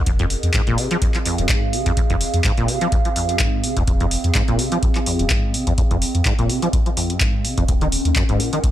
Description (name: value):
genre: acid house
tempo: 126 BPM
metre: 4/4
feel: swing 54% on 16ths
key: F phrygian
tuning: A4 = 436 Hz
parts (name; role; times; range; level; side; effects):
- round analog bass; bass; 0.0-8.4 s; Eb1 to F2; -22 LUFS; equal; tube saturation, sidechain pumping
- warbly tape-like pad; texture; 0.0-8.7 s; C4 to Gb5; -26 LUFS; right 2 dB; chorus, built-in reverb, sidechain pumping
- acid bass, saw; riff; 0.1-8.7 s; Eb2 to F3; -23 LUFS; equal; ensemble chorus, dub echo
- booming analog drum machine; drums; 0.1-8.7 s; handclaps, hi-hat; -24 LUFS; equal; small room ambience
- electronic kick drum; drums; 0.1-8.7 s; none; -20 LUFS; equal; small room ambience
room: little or no reverb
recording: none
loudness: -16 LUFS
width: side -12 dB against mid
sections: 0.0-8.7 A section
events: filter sweep on acid bass 0.0-8.7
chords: 0.1 Fm7; 7.7 Ebm7